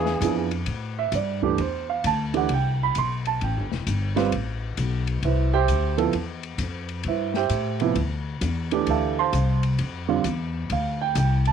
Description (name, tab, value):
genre	modal jazz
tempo	132 BPM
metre	4/4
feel	swing 66% on 8ths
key	A minor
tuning	A4 = 440 Hz
part	warm trumpet	melody	0.0-0.5 s	G#4	-28 LUFS	left 3 dB	none
part	trombone with metal mute	second line	0.0-0.5 s	E3	-33 LUFS	left 2 dB	none
part	dark grand piano	accompaniment	0.0-11.5 s	C3 to C6	-24 LUFS	right 11 dB	none
part	upright bass	bass	0.0-11.5 s	E1 to A2	-25 LUFS	left 2 dB	none
part	open jazz drum kit	drums	0.1-11.5 s	hi-hat, kick drum, ride cymbal, snare drum	-34 LUFS	left 11 dB	none
room	light reverb, small room ambience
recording	1960s-style stereo with parts hard left and right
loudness	-22 LUFS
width	side -7 dB against mid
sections	0.7-11.5 A section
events	none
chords	0.0 E7b9; 0.7 Am9; 8.0 Dm9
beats	0.21 | 0.67 1.13 1.58 2.04 | 2.49 2.95 3.40 3.86 | 4.32 4.77 5.23 5.68 | 6.14 6.59 7.05 7.50 | 7.96 8.42 8.87 9.33 | 9.78 10.24 10.69 11.15